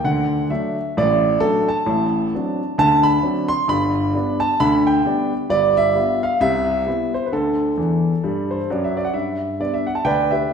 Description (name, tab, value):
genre	jazz, stride piano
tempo	132 BPM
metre	4/4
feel	swing 59% on 8ths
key	G major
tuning	A4 = 441 Hz
part	dark grand piano	solo	0.0-10.5 s	G1 to C6	-17 LUFS	equal	none
room	wet recital hall reverb, RT60 1.5 s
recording	recorded in a church or concert hall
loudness	-17 LUFS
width	side -6 dB against mid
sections	0.0-9.1 A section; 9.1-10.5 B section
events	grand piano fill 7.8-9.1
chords	0.0 D; 1.9 D7/A; 3.7 G; 5.5 G7; 6.4 Cmaj7; 7.3 D; 9.1 G